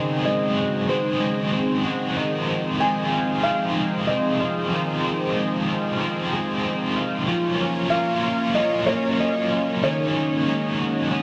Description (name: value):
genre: dream pop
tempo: 94 BPM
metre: 4/4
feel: straight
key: unclear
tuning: A4 = 435 Hz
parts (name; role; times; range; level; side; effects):
- felt-muted upright piano; melody; 0.0-11.2 s; C5 to Ab5; -28 LUFS; equal; delay
- biting overdriven guitar; accompaniment; 0.0-11.2 s; F2 to Ab4; -29 LUFS; equal; tremolo, lush chorus
- lush unison pad; sustained chords; 0.0-11.2 s; Db3 to Db5; -29 LUFS; equal; chorus, phaser
- twelve-string electric guitar; arpeggios; 0.0-11.2 s; Eb3 to Gb4; -28 LUFS; equal; analog chorus, delay
room: moderate huge ambient reverb, RT60 4.9 s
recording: dark, warm production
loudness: -23 LUFS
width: mono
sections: 0.0-11.2 A section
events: none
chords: 0.0 Ab7; 2.2 Fm7; 7.3 Gbmaj7; 9.8 Ab7sus4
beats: 0.25 0.89 1.53 | 2.17 2.81 3.44 4.08 | 4.72 5.36 6.00 6.64 | 7.28 7.91 8.55 9.19 | 9.83 10.47 11.10